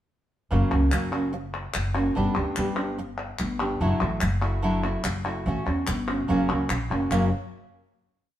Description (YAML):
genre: flamenco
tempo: 145 BPM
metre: 4/4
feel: straight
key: F# phrygian dominant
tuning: A4 = 440 Hz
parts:
  - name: nylon-string guitar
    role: accompaniment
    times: 0.5-7.3 s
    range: F#2 to G4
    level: -26 LUFS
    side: right 1 dB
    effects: none
  - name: upright bass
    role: bass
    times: 0.5-7.3 s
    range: F#1 to E2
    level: -27 LUFS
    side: equal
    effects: none
  - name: palmas hand claps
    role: percussion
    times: 0.7-7.2 s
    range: none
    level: -31 LUFS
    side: left 2 dB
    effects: none
room: moderate stone room reverb, RT60 1.1 s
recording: band playing live in one room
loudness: -23 LUFS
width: side -12 dB against mid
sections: 0.5-7.1 groove; 7.1-8.4 final chord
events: none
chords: 0.5 F#; 2.2 G; 3.8 Dadd9/F#; 5.5 A6; 6.3 F#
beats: | 0.51 0.92 1.33 1.75 | 2.16 2.57 2.98 3.40 | 3.81 4.22 4.63 5.05 | 5.46 5.87 6.29 6.70 | 7.11